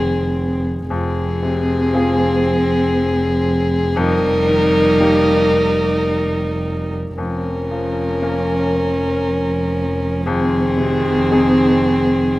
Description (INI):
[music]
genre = neoclassical piano and strings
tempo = 102-120 BPM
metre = 3/4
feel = rubato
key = F minor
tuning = A4 = 437 Hz
[part]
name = dark violin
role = melody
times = 0.0-12.4 s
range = Ab4 to Bb4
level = -20 LUFS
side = left 2 dB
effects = none
[part]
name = warm cello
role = second line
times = 0.0-12.4 s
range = Eb3 to G3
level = -25 LUFS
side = right 4 dB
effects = none
[part]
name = clear baby grand piano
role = accompaniment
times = 0.0-12.4 s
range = F2 to Bb4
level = -24 LUFS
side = left 2 dB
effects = none
[part]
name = dark viola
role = accompaniment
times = 0.0-12.4 s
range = C4 to Eb4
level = -20 LUFS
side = right 1 dB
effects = none
[part]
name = rich double bass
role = bass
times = 0.0-12.4 s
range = F1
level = -22 LUFS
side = equal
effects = none
[sound]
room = light reverb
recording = rough home demo mix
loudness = -15 LUFS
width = side -17 dB against mid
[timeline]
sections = 0.9-12.4 A section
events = none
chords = 0.0 Ab/F; 0.9 Fm; 4.0 Eb/F; 7.2 Bbm/F; 10.3 Ab/F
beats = 0.35 | 0.89 1.42 1.93 | 2.44 2.95 3.46 | 3.97 4.48 5.00 | 5.54 6.08 6.64 | 7.18 7.71 8.23 | 8.74 9.25 9.76 | 10.27 10.78 11.31 | 11.88